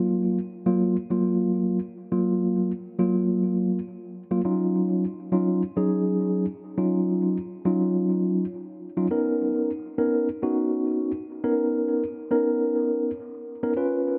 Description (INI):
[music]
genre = pop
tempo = 103 BPM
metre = 4/4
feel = straight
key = unclear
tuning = A4 = 440 Hz
[part]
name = mellow tine electric piano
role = solo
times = 0.0-14.2 s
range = F#3 to B4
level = -25 LUFS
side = equal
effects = tape echo
[sound]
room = light reverb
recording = none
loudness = -25 LUFS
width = mono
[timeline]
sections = 0.0-14.2 A section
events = none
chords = 0.0 F#maj7; 4.4 D#m9; 9.1 Bmaj9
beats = 0.37 0.95 1.54 | 2.12 2.70 3.28 3.87 | 4.45 5.03 5.61 6.20 | 6.78 7.36 7.94 8.53 | 9.11 9.69 10.27 10.86 | 11.44 12.02 12.60 13.19 | 13.77